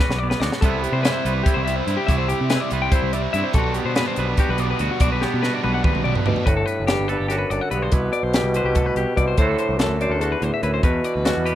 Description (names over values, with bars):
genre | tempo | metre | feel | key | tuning
math rock and midwest emo | 288 BPM (eighths) | 7/8 | straight | G major | A4 = 440 Hz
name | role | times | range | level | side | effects
twangy electric guitar | accompaniment | 0.0-11.6 s | G2 to C5 | -28 LUFS | right 7 dB | none
clean electric guitar | arpeggios | 0.0-11.6 s | F#4 to G5 | -26 LUFS | left 6 dB | slapback echo
growling picked electric bass | bass | 0.1-11.5 s | F#1 to C3 | -24 LUFS | equal | overdrive
crisp fusion drum kit | drums | 0.1-11.6 s | hi-hat, kick drum, snare drum, toms | -22 LUFS | equal | none
biting overdriven guitar | riff | 0.6-6.5 s | B2 to E4 | -26 LUFS | right 2 dB | none
dark bassoon | melody | 6.3-11.6 s | E2 to B2 | -23 LUFS | equal | slapback echo
room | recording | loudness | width
studio reverb | rough home demo mix | -18 LUFS | side -12 dB against mid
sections
0.0-6.5 A section; 6.5-11.6 B section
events
drum fill 0.0-0.6, 5.2-6.5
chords
0.0 Gmaj7/B; 0.6 Cmaj7; 3.5 Gmaj7/B; 6.5 Gmaj9; 7.9 Cmaj7; 9.4 D9; 10.8 Em9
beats
0.20 0.41 | 0.62 0.83 1.04 1.25 1.46 1.67 1.88 | 2.09 2.29 2.50 2.71 2.92 3.13 3.34 | 3.55 3.76 3.97 4.18 4.38 4.59 4.80 | 5.01 5.22 5.43 5.64 5.85 6.05 6.26 | 6.47 6.68 6.89 7.10 7.31 7.51 7.72 | 7.93 8.14 8.35 8.56 8.77 8.97 9.18 | 9.39 9.60 9.80 10.01 10.22 10.43 10.64 | 10.84 11.05 11.26 11.47